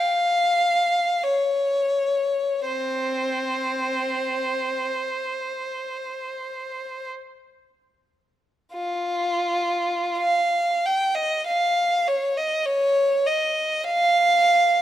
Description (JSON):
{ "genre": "classical, free, expressive piece for unaccompanied violin", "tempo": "33-51 BPM", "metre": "4/4", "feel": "rubato", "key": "unclear", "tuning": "A4 = 440 Hz", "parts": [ { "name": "rich violin", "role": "solo", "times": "0.0-14.8 s", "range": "C4 to G5", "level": "-20 LUFS", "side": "equal", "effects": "none" } ], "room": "light reverb", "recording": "close, detailed microphones", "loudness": "-20 LUFS", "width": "side -12 dB against mid", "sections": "0.0-8.7 A section; 8.7-14.8 B section", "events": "none", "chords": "none" }